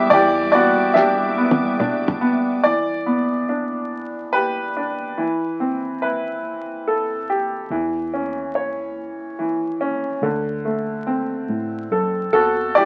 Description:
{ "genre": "acoustic folk-pop ballad", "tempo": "71 BPM", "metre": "3/4", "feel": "straight", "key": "E minor", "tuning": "A4 = 440 Hz", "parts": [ { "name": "bright baby grand piano", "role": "melody", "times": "0.0-12.9 s", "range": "B2 to E5", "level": "-21 LUFS", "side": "equal", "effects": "none" }, { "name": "warm chamber string section", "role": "sustained chords", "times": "0.0-2.6 s", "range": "G3 to D6", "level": "-31 LUFS", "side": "equal", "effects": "none" }, { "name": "vintage muted fingered electric bass", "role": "bass", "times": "0.1-1.8, 7.7-12.7 s", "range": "D2 to A2", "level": "-32 LUFS", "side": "equal", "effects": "none" }, { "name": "cloth-damped thuddy drum kit", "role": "drums", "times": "0.1-2.3 s", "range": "kick drum, ride cymbal, snare drum, toms", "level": "-26 LUFS", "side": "equal", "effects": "none" } ], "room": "moderate studio reverb, RT60 0.7 s", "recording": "very old 78 rpm record, vinyl crackle", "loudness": "-21 LUFS", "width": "mono", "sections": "0.0-2.6 A section; 2.6-12.8 B section", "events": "drum fill 1.0-2.6", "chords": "0.0 Em7; 5.2 C6/E; 7.7 C#m/E; 10.2 D7" }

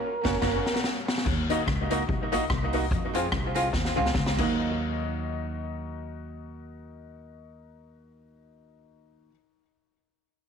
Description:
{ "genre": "ska", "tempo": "145 BPM", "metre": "4/4", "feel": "swing 57% on 8ths", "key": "Eb dorian", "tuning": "A4 = 444 Hz", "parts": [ { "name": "tonewheel organ", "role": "melody", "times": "0.0-0.8 s", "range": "Bb4", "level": "-31 LUFS", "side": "right 3 dB", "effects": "slow rotary speaker" }, { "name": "archtop guitar, miked and amplified", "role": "accompaniment", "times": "0.2-9.4 s", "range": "Gb3 to Gb4", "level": "-32 LUFS", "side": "right 9 dB", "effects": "tape echo" }, { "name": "clear upright piano", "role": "stabs", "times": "0.2-9.3 s", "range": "Db4 to F5", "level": "-33 LUFS", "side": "left 9 dB", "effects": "tape echo" }, { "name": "street-band drum kit", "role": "drums", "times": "0.2-4.5 s", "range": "crash cymbal, hi-hat, kick drum, rim click, snare drum", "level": "-29 LUFS", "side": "equal", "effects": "none" }, { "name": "upright bass", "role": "bass", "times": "0.3-9.3 s", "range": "Gb1 to F2", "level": "-32 LUFS", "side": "equal", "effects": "tube saturation" }, { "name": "clean electric guitar", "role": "riff", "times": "1.3-4.3 s", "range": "Bb2 to F3", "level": "-36 LUFS", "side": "left 10 dB", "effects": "ensemble chorus" } ], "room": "studio reverb", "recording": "1960s-style stereo with parts hard left and right", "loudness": "-25 LUFS", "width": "side -6 dB against mid", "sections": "0.0-1.3 A section; 1.3-4.6 B section; 4.6-7.9 C section", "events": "band accent 0.0-1.3; drum fill 0.4-1.3, 3.7-4.6", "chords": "0.0 Gb; 1.3 Ebm; 2.9 Fm; 4.4 Ebm" }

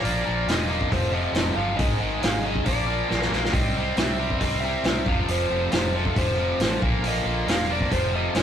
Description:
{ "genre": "blues rock power trio and southern rock", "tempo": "137 BPM", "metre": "4/4", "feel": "straight", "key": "unclear", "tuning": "A4 = 440 Hz", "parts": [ { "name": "overdriven slide guitar", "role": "melody", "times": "0.0-8.4 s", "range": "A4 to F5", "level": "-30 LUFS", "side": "right 1 dB", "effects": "none" }, { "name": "overdriven tonewheel organ", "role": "sustained chords", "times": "0.0-8.4 s", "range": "D3 to F5", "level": "-38 LUFS", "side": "right 4 dB", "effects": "none" }, { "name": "biting overdriven guitar", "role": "riff", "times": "0.0-8.4 s", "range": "F2 to C4", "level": "-26 LUFS", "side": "left 1 dB", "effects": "none" }, { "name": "vintage muted fingered electric bass", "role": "bass", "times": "0.0-8.4 s", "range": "E1 to C2", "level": "-29 LUFS", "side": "equal", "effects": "none" }, { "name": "vintage drum kit", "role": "drums", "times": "0.0-8.4 s", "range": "hi-hat, kick drum, snare drum", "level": "-25 LUFS", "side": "equal", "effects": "none" } ], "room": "moderate studio reverb, RT60 0.5 s", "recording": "rough rehearsal-room recording, tube saturation", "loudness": "-21 LUFS", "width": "side -9 dB against mid", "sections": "0.0-8.4 A section", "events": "drum fill 3.1-3.5", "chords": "0.0 Bb; 0.9 F; 1.8 Ab; 2.7 Bb; 3.5 C; 5.1 F; 6.8 Bb; 7.9 F" }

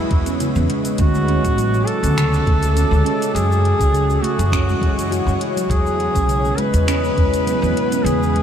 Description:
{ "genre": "organic downtempo", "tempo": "102 BPM", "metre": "4/4", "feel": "swing 53% on 16ths", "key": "unclear", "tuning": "A4 = 440 Hz", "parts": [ { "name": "warm duduk", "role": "melody", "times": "0.0-8.4 s", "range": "E4 to B4", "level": "-21 LUFS", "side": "left 1 dB", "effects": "ping-pong delay, shimmer reverb" }, { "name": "ethereal airy pad", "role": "sustained chords", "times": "0.0-8.4 s", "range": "G#3 to D6", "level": "-26 LUFS", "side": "equal", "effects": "ensemble chorus, built-in reverb, sidechain pumping, shimmer reverb" }, { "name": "handpan", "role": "arpeggios", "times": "0.0-8.4 s", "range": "C#3 to F#4", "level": "-22 LUFS", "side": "right 2 dB", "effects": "ping-pong delay" }, { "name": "upright bass", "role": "bass", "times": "0.0-8.4 s", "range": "A1 to F#2", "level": "-19 LUFS", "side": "equal", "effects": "sidechain pumping" }, { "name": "deep house drum kit", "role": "drums", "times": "0.1-8.4 s", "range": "finger snaps, hi-hat, shaker", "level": "-31 LUFS", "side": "equal", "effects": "overdrive" }, { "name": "electronic kick drum", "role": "drums", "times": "0.1-7.3 s", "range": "none", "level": "-19 LUFS", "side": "equal", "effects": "none" } ], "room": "moderate huge ambient reverb, RT60 8.0 s", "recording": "dreamy mix soaked in reverb", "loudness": "-15 LUFS", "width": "side -8 dB against mid", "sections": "0.0-8.4 A section", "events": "none", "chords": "0.0 E; 1.0 D; 3.3 F#7(no3); 5.7 E" }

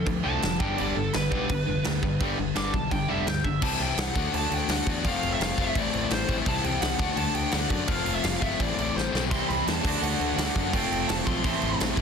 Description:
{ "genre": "punk rock", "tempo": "169 BPM", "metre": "4/4", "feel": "straight", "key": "C major", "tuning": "A4 = 440 Hz", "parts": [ { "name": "smooth overdriven lead guitar", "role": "melody", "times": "0.0-11.8 s", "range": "A4 to D6", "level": "-31 LUFS", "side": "right 1 dB", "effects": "tape echo" }, { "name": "crunchy overdriven guitar", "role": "riff", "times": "0.0-3.6, 9.3-12.0 s", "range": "G2 to F#4", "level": "-31 LUFS", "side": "right 16 dB", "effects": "none" }, { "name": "distorted electric guitar", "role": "riff", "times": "0.0-12.0 s", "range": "G2 to F#4", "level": "-29 LUFS", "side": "left 10 dB", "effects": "distortion" }, { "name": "modern bright picked electric bass", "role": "bass", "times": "0.1-12.0 s", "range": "F1 to F#2", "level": "-32 LUFS", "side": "right 1 dB", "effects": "none" }, { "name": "big rock drum kit", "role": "drums", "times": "0.1-12.0 s", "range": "crash cymbal, kick drum, snare drum, splash cymbal", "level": "-29 LUFS", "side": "right 1 dB", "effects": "none" } ], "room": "light reverb", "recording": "dense, heavily limited modern master", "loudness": "-24 LUFS", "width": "side -6 dB against mid", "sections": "0.0-3.6 A section; 3.6-12.0 B section", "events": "lead electric guitar solo 0.0-3.6; drum fill 9.0-9.3", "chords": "0.0 Dm; 0.6 G; 3.6 C; 4.2 D; 5.1 F; 5.8 Am; 6.5 C; 7.0 D; 7.9 F; 8.6 Am; 9.3 C; 9.8 D; 10.7 F; 11.4 Am" }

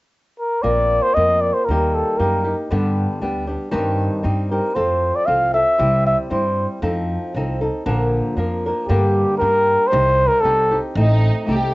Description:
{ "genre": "mexican folk, mariachi", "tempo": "117 BPM", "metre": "2/4", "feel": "swing 53% on 8ths", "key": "Bb major", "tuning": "A4 = 440 Hz", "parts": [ { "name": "dark trumpet", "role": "melody", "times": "0.4-6.7, 8.9-10.8 s", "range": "G4 to F5", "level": "-17 LUFS", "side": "equal", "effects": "cassette tape" }, { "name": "flamenco guitar", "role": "accompaniment", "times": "0.6-11.7 s", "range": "G2 to Bb4", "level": "-22 LUFS", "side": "equal", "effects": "none" }, { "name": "upright bass", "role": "bass", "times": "0.6-11.7 s", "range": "A1 to G2", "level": "-21 LUFS", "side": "equal", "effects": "none" }, { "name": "warm studio violin section", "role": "second line", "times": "11.0-11.7 s", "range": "Eb4 to G4", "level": "-22 LUFS", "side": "right 1 dB", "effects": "none" } ], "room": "moderate booth ambience, RT60 0.3 s", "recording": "home recording on cassette, nothing above 7.9 kHz", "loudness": "-16 LUFS", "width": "side -20 dB against mid", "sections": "0.6-8.9 A section; 8.9-11.7 B section", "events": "none", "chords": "0.0 N.C.; 0.6 Bbsus2; 1.7 Eb; 2.7 G; 3.7 Cm/G; 4.8 F; 5.8 C; 6.8 F7; 7.8 Bb; 8.9 Gm; 9.9 Cm; 11.0 Adim" }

